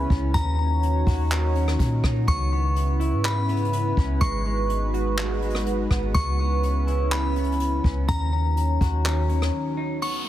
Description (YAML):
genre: hip hop, atmospheric cloud-rap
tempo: 124 BPM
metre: 4/4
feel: half-time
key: C# dorian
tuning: A4 = 437 Hz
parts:
  - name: glassy synth bell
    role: melody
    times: 0.0-10.3 s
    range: A#5 to C#6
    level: -30 LUFS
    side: left 3 dB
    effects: chorus, ping-pong delay
  - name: dark analog pad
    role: sustained chords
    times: 0.0-10.3 s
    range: C#3 to C#5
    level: -29 LUFS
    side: right 2 dB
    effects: chorus
  - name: clean electric guitar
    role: arpeggios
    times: 0.0-10.3 s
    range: G#3 to F#4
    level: -34 LUFS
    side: left 2 dB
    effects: vibrato effect, ping-pong delay
  - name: clean 808-style bass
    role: bass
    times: 0.0-9.5 s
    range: G#1 to A#2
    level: -23 LUFS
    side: equal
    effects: none
  - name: jazz brush drum kit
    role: drums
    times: 0.1-9.5 s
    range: handclaps, hi-hat, kick drum, rim click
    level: -27 LUFS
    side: equal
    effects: none
  - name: downlifter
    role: sound effects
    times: 10.0-10.3 s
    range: none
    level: -31 LUFS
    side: equal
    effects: none
room: small room ambience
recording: heavily compressed radio sound, multiband compression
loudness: -21 LUFS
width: side -13 dB against mid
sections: 0.0-10.0 A section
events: break 9.5-10.0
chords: 0.3 D#m7; 2.3 C#m7; 4.2 G#m7; 6.1 C#m7; 8.1 D#m7